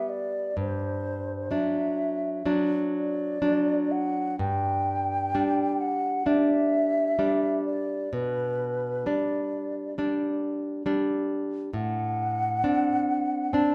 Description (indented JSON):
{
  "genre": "romantic duo for flute and classical guitar",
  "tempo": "62-69 BPM",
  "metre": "4/4",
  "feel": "rubato",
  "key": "G major",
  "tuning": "A4 = 440 Hz",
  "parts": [
    { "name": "mellow hollow concert flute", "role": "melody", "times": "0.0-13.7 s", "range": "B4 to A5", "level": "-31 LUFS", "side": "equal", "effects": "none" },
    { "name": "nylon-string guitar", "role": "accompaniment", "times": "0.0-13.7 s", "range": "G2 to D4", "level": "-29 LUFS", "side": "equal", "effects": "none" }
  ],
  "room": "wet recital hall reverb, RT60 1.3 s",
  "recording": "none",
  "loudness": "-27 LUFS",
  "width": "mono",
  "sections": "0.0-13.7 A section",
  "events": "none",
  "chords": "0.0 G; 0.6 D7/G; 4.4 G5; 8.1 G/B; 11.7 D7/A"
}